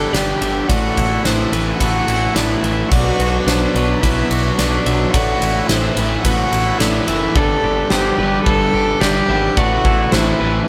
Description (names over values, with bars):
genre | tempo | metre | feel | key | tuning
post-rock | 108 BPM | 4/4 | straight | A dorian | A4 = 440 Hz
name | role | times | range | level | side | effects
rich cello | melody | 0.0-10.7 s | D4 to A4 | -22 LUFS | equal | none
hand-pumped harmonium | sustained chords | 0.0-10.7 s | F#4 to B5 | -30 LUFS | equal | none
twangy electric guitar | arpeggios | 0.0-10.7 s | G2 to G4 | -29 LUFS | equal | none
twelve-string electric guitar | arpeggios | 0.0-10.7 s | B4 to E5 | -30 LUFS | equal | none
crunchy overdriven guitar | riff | 0.0-10.7 s | G2 to B3 | -24 LUFS | equal | none
fuzz picked electric bass | bass | 0.0-10.6 s | F#1 to B1 | -23 LUFS | equal | overdrive
huge arena drum kit | drums | 0.1-10.3 s | crash cymbal, kick drum, ride cymbal, snare drum | -22 LUFS | equal | none
room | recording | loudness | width
moderate studio reverb, RT60 0.8 s | band playing live in one room | -16 LUFS | mono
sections
0.0-10.7 A section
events
build-up 0.0-10.7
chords
0.0 G; 0.7 Amadd9; 2.9 Bm; 5.1 Amadd9; 7.4 G; 9.6 Amadd9